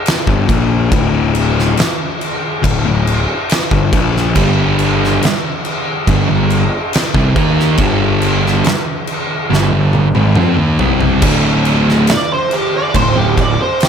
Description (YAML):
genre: stoner and doom metal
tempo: 70 BPM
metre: 4/4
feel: straight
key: D minor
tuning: A4 = 440 Hz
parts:
  - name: oversized low-tuned drum kit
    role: drums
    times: 0.1-13.9 s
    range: crash cymbal, kick drum, snare drum, toms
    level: -16 LUFS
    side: equal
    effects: none
  - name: thick fuzz guitar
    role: riff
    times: 0.3-13.5 s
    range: D2 to Eb4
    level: -17 LUFS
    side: left 9 dB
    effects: distortion
  - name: fuzz picked electric bass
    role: bass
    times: 0.3-13.6 s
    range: D1 to F2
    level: -17 LUFS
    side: equal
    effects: overdrive
  - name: thick fuzz guitar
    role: riff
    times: 4.3-13.5 s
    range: D2 to Eb4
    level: -16 LUFS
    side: right 9 dB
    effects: distortion
  - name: fuzz lead guitar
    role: melody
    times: 12.1-13.9 s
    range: G4 to D5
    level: -16 LUFS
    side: right 2 dB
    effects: wah, distortion
room: studio reverb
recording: none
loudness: -11 LUFS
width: side -7 dB against mid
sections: 0.0-11.2 A section; 11.2-13.9 B section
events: drum fill 9.5-11.2; lead electric guitar solo 11.2-13.9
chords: 0.0 Dm; 4.4 G5; 11.2 D5